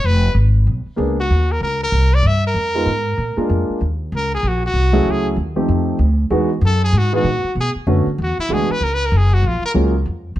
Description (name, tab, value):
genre	jazz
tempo	192 BPM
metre	4/4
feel	swing 63% on 8ths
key	unclear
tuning	A4 = 438 Hz
part	brilliant trumpet	melody	0.0-9.7 s	E4 to Fb5	-21 LUFS	left 1 dB	plate reverb
part	upright bass	bass	0.0-10.4 s	F1 to B2	-17 LUFS	equal	none
part	warm grand piano	accompaniment	1.0-9.9 s	D3 to G#4	-19 LUFS	right 1 dB	none
room	light reverb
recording	dark, warm production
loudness	-15 LUFS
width	side -14 dB against mid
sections	0.0-3.8 A section; 3.8-10.4 B section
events	trumpet solo 3.8-10.4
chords	0.0 Fdim; 0.7 Bm69; 1.3 Gb6; 1.9 C5; 2.6 Fm7b5; 3.2 Bb7; 3.8 Ebm7; 5.1 Gbm9; 5.7 F9; 6.3 Emaj7; 7.6 Bm7; 8.2 E9; 8.8 Gbmaj9